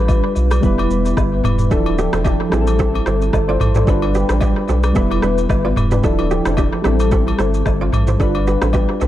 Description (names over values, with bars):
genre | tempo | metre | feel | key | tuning
afrobeats | 111 BPM | 4/4 | swing 55% on 16ths | A minor | A4 = 441 Hz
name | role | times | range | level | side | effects
soft electric-piano-like synth keys | accompaniment | 0.0-9.1 s | E3 to C5 | -19 LUFS | left 1 dB | chorus, phaser, tape echo
warm sub bass | bass | 0.0-9.1 s | D1 to B1 | -19 LUFS | equal | none
afro-pop drum kit | drums | 0.1-9.1 s | kick drum, rim click, shaker, toms | -20 LUFS | equal | vintage 12-bit sampler grit, tape echo
agogo bells and woodblock | percussion | 0.1-8.9 s | none | -29 LUFS | left 4 dB | tape echo
kora | riff | 1.7-9.1 s | B3 to D5 | -24 LUFS | right 4 dB | tape echo
room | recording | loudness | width
digital ambience | echo-heavy mix | -14 LUFS | side -13 dB against mid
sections
0.0-9.1 A section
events
none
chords
0.0 G7; 0.6 Em; 1.7 Dmadd9; 2.5 Am7; 3.9 G7; 5.0 Em; 6.0 Dmadd9; 6.8 Am7; 8.2 G7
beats
0.09 0.63 1.17 | 1.71 2.25 2.79 3.33 | 3.87 4.42 4.96 5.50 | 6.04 6.58 7.12 7.66 | 8.20 8.74